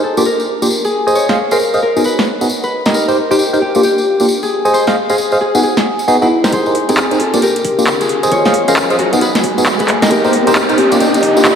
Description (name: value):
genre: UK garage, two-step garage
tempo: 134 BPM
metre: 4/4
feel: swing 62% on 16ths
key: Ab major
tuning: A4 = 440 Hz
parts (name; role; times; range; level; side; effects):
- Celtic harp; melody; 0.0-11.6 s; C4 to D#5; -15 LUFS; left 2 dB; ping-pong delay
- barky tine electric piano; stabs; 0.2-11.4 s; Bb3 to Ab5; -14 LUFS; right 1 dB; overdrive, phaser, low-pass filter, ping-pong delay
- tambourine; percussion; 0.2-11.6 s; none; -24 LUFS; left 1 dB; none
- garage drum kit; drums; 1.3-11.6 s; handclaps, hi-hat, snare drum; -17 LUFS; equal; none
- electronic kick drum; drums; 6.5-11.3 s; none; -26 LUFS; equal; high-pass filter on kick, high-pass filter on room
- riser; sound effects; 7.9-11.6 s; none; -19 LUFS; equal; none
room: wet lush hall reverb, RT60 1.9 s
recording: dreamy mix soaked in reverb, vinyl crackle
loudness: -11 LUFS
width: side -7 dB against mid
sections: 0.0-6.5 A section; 6.5-11.6 B section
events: build-up 6.5-11.6; filter sweep on tine electric piano 6.5-11.6; riser 7.9-11.6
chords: 0.0 Bb6; 0.9 Ab69; 1.8 Bmaj7; 2.9 Eb6; 3.6 Bb6; 4.5 Ab6; 5.4 B6; 6.5 Abmaj9; 7.2 Bb6; 8.1 Dbmaj9; 9.0 B6; 10.1 Eb6; 10.8 Ebmaj9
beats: 0.26 0.71 | 1.15 1.60 2.05 2.50 | 2.94 3.39 3.84 4.29 | 4.74 5.18 5.63 6.08 | 6.53 6.97 7.42 7.87 | 8.32 8.77 9.21 9.66 | 10.11 10.56 11.00 11.45